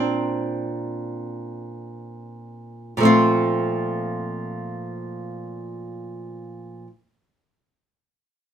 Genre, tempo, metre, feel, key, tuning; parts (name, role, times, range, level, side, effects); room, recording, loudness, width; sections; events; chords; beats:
solo jazz; free time; Bb major; A4 = 440 Hz
nylon-string guitar; solo; 0.0-6.9 s; Bb2 to Bb4; -23 LUFS; right 1 dB
moderate studio reverb, RT60 0.6 s; minimal, uncompressed stereo recording; -21 LUFS; side -9 dB against mid
0.0-3.0 A section; 3.0-7.4 B section
slowing down 0.0-3.0
0.0 Bbadd9; 3.0 Bbsus2
free time